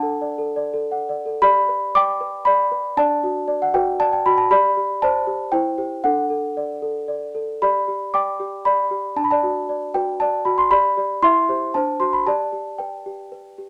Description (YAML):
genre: classical, lullaby for celesta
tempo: 116 BPM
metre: 3/4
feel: straight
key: G major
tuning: A4 = 440 Hz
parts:
  - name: small celesta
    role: solo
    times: 0.0-13.7 s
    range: D4 to D6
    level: -20 LUFS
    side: equal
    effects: none
room: moderate studio reverb, RT60 0.8 s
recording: none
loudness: -20 LUFS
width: mono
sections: 0.0-1.4 A section; 1.4-13.7 B section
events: none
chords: 0.0 D; 1.4 G; 3.0 D; 4.5 G; 5.5 C/E; 6.0 D; 7.6 G; 9.2 D; 10.7 G; 11.2 C/E; 11.7 D7; 12.3 G